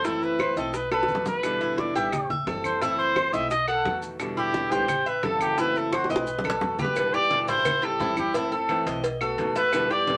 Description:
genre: latin, Cuban son and guajira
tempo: 174 BPM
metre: 4/4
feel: straight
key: E minor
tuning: A4 = 445 Hz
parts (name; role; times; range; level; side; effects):
- warm trumpet; melody; 0.0-10.2 s; F#4 to F#5; -28 LUFS; equal; none
- nylon-string guitar; accompaniment; 0.0-10.2 s; B2 to F#4; -34 LUFS; equal; none
- Cuban tres; arpeggios; 0.0-10.2 s; E4 to E5; -31 LUFS; equal; none
- upright bass; bass; 0.0-10.2 s; F#1 to E2; -43 LUFS; equal; none
- bongos and cowbell; percussion; 0.0-10.2 s; none; -34 LUFS; equal; none
- congas; percussion; 0.0-10.2 s; none; -40 LUFS; equal; none
- maracas; percussion; 0.0-10.2 s; none; -50 LUFS; equal; none
- claves; percussion; 0.4-9.9 s; none; -38 LUFS; equal; none
room: wet small room ambience, RT60 0.5 s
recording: none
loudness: -25 LUFS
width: mono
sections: 0.0-7.0 A section; 7.0-10.2 B section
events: drum fill 0.9-1.4, 5.9-7.0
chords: 0.0 F#m7b5; 0.7 B7; 1.4 Em7; 2.1 Am7; 2.8 F#m7b5; 3.5 B7; 4.2 Em7; 4.9 Am7; 5.6 F#m7b5; 6.3 B7; 7.0 Em7; 7.7 Am7; 8.3 F#m7b5; 9.0 B7

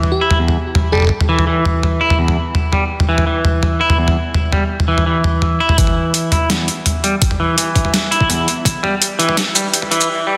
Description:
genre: half-time drum and bass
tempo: 167 BPM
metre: 4/4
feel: half-time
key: E minor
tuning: A4 = 440 Hz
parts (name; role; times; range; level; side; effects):
- semi-hollow electric guitar; arpeggios; 0.0-10.4 s; E2 to E4; -19 LUFS; equal; low-pass filter, dub echo
- boom bap sampler-style drum kit; drums; 0.0-10.1 s; hi-hat, shaker, snare drum, toms; -18 LUFS; equal; overdrive, studio reverb
- bell-like FM electric piano; melody; 0.1-1.3 s; G4 to A4; -25 LUFS; equal; chorus, dub echo
- electronic kick drum; drums; 5.8-8.7 s; none; -18 LUFS; equal; overdrive, studio reverb
room: wet lush hall reverb, RT60 2.0 s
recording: dense, heavily limited modern master, high-pass filter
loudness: -16 LUFS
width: mono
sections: 0.0-5.8 A section; 5.8-10.4 B section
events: build-up 5.8-10.4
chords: none

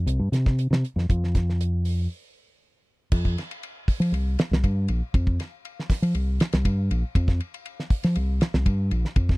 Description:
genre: afrobeat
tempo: 119 BPM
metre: 4/4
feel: straight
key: unclear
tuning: A4 = 439 Hz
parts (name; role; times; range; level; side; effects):
- fingered electric bass; bass; 0.0-9.4 s; Bb1 to F3; -22 LUFS; equal; none
- damped 70s drum kit; drums; 0.1-9.4 s; crash cymbal, hi-hat, kick drum, ride cymbal, snare drum; -24 LUFS; equal; none
room: little or no reverb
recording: dry, close 1970s-style studio recording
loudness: -22 LUFS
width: side -24 dB against mid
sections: 0.0-3.1 A section; 3.1-9.4 B section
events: break 2.1-3.1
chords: none

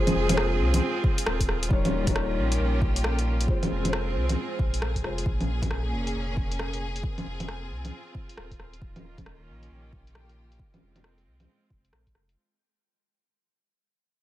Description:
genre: future garage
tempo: 135 BPM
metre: 4/4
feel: swing 64% on 16ths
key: F minor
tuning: A4 = 440 Hz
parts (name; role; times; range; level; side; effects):
- felt-muted upright piano; accompaniment; 0.0-5.3 s; G3 to Db5; -32 LUFS; left 2 dB; sidechain pumping, dub echo
- clear studio string section; sustained chords; 0.0-12.4 s; Bb2 to Ab4; -32 LUFS; right 1 dB; sidechain pumping
- warm sub bass; bass; 0.1-12.4 s; Eb1 to C2; -28 LUFS; equal; sidechain pumping
- deep house drum kit; drums; 0.1-12.4 s; bongos, hi-hat, rim click; -30 LUFS; equal; overdrive, low-pass filter on hats, low-pass filter on perc, low-pass filter on snare, low-pass filter on room
- electronic kick drum; drums; 1.0-12.1 s; none; -27 LUFS; equal; overdrive
room: digital ambience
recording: none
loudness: -24 LUFS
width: side -14 dB against mid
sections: 0.0-12.4 A section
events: fade-out 0.0-12.4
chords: 0.0 Fm; 1.7 Eb7; 3.5 Fm; 5.3 Bbm7; 7.0 Fm; 8.8 Eb7; 10.6 Fm

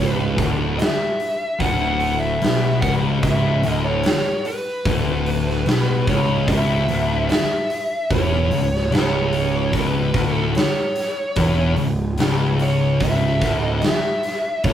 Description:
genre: stoner and doom metal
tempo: 74 BPM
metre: 4/4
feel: straight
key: C# minor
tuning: A4 = 441 Hz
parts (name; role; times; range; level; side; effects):
- fuzz lead guitar; melody; 0.0-14.7 s; B4 to F#5; -24 LUFS; equal; distortion
- thick fuzz guitar; riff; 0.0-14.7 s; C#2 to B2; -23 LUFS; left 5 dB; distortion
- thick fuzz guitar; riff; 0.0-14.7 s; C#2 to B2; -23 LUFS; right 3 dB; distortion
- fuzz picked electric bass; bass; 0.0-14.7 s; C#1 to B1; -25 LUFS; right 1 dB; overdrive
- big rock drum kit; drums; 0.4-14.7 s; hi-hat, kick drum, snare drum; -23 LUFS; right 1 dB; none
room: moderate studio reverb, RT60 0.5 s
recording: rough rehearsal-room recording, tube saturation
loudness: -17 LUFS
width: side -10 dB against mid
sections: 0.0-14.7 A section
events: none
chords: 0.0 C#m

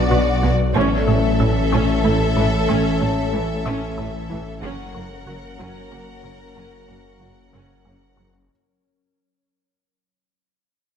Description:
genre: cinematic, hybrid orchestral and electronic film score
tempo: 62 BPM (dotted quarters)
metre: 6/8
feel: straight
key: unclear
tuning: A4 = 440 Hz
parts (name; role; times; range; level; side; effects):
- clear studio violin section; melody; 0.0-8.3 s; D5 to F#5; -30 LUFS; left 4 dB; none
- rich symphonic violin section; second line; 0.0-8.3 s; F#4 to A#4; -30 LUFS; left 3 dB; none
- warm symphonic viola section; accompaniment; 0.0-8.3 s; E3 to C#4; -28 LUFS; right 1 dB; none
- mellow French horn section; sustained chords; 0.0-8.1 s; C#4 to A4; -31 LUFS; left 4 dB; none
- soft additive organ-like pad; sustained chords; 0.0-8.5 s; E3 to D5; -25 LUFS; left 1 dB; ensemble chorus, built-in reverb
- warm trombone section; sustained chords; 0.0-8.1 s; E3 to B3; -31 LUFS; right 1 dB; none
- wide detuned saw bass; bass; 0.0-8.5 s; F#1 to B1; -24 LUFS; equal; chorus
- felt-muted upright piano; texture; 0.0-8.5 s; F#4 to C#6; -36 LUFS; left 1 dB; none
- resonant blip pluck; arpeggios; 0.1-8.4 s; F#3 to A4; -30 LUFS; left 1 dB; phaser, tape echo
- clear symphonic double bass section; bass; 0.1-8.3 s; F#1 to B1; -26 LUFS; right 2 dB; none
- warm symphonic cello section; bass; 0.1-8.3 s; F#2 to B2; -26 LUFS; right 3 dB; none
room: moderate scoring stage reverb, RT60 1.6 s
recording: none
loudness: -17 LUFS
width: side -8 dB against mid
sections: 0.0-8.5 A section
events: fade-out 0.0-8.5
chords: 0.0 Bm; 0.8 A; 4.6 F#

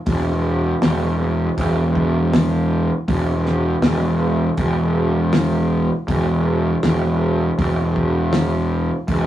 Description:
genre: psychedelic rock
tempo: 80 BPM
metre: 4/4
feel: straight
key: unclear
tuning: A4 = 440 Hz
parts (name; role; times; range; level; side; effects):
- fuzz picked electric bass; bass; 0.1-9.3 s; E1; -17 LUFS; equal; overdrive
- cloth-damped thuddy drum kit; drums; 0.1-9.3 s; hi-hat, kick drum, snare drum; -20 LUFS; left 1 dB; none
room: moderate studio reverb, RT60 0.6 s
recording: rough rehearsal-room recording, tube saturation, small room ambience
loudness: -16 LUFS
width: side -12 dB against mid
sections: 0.0-9.3 A section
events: none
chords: none

